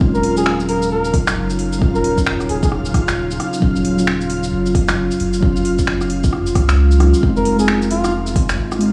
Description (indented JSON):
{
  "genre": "future garage",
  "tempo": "133 BPM",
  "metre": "4/4",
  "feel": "swing 61% on 16ths",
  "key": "unclear",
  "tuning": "A4 = 440 Hz",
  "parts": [
    { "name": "muted felt-like synth keys", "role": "accompaniment", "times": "0.0-8.9 s", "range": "Gb3 to F4", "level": "-22 LUFS", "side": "equal", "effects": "chorus, sidechain pumping, tape echo" },
    { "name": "warbly tape-like pad", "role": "sustained chords", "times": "0.1-8.9 s", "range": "Db3 to F4", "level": "-27 LUFS", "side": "equal", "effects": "chorus, built-in reverb, sidechain pumping" },
    { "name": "soft dub sub bass", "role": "bass", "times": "0.0-8.9 s", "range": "Eb1 to Db2", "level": "-23 LUFS", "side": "equal", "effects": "tube saturation, sidechain pumping" },
    { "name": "electronic kick drum", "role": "drums", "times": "0.0-8.5 s", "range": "none", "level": "-20 LUFS", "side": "equal", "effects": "small room ambience" },
    { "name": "backwards swelling texture", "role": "texture", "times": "0.0-8.9 s", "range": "F4 to F5", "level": "-32 LUFS", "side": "equal", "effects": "built-in reverb" },
    { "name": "trumpet with bucket mute", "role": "melody", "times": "0.1-2.7, 7.4-8.1 s", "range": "F4 to Bb4", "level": "-24 LUFS", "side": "equal", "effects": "vintage 12-bit sampler grit, tape echo" },
    { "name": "garage drum kit", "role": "drums", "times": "0.1-8.9 s", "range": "finger snaps, hi-hat, rim click, shaker", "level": "-26 LUFS", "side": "equal", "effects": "small room ambience" }
  ],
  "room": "light reverb",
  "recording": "dry, gritty hardware recording, vinyl crackle, studio reverb",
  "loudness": "-17 LUFS",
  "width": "mono",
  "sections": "0.0-7.2 A section; 7.2-8.9 B section",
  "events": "none",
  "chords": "0.0 Ebm7; 7.2 Fm7",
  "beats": "| 0.01 0.46 0.91 1.36 | 1.81 2.27 2.72 3.17 | 3.62 4.07 4.52 4.97 | 5.42 5.88 6.33 6.78 | 7.23 7.68 8.13 8.58"
}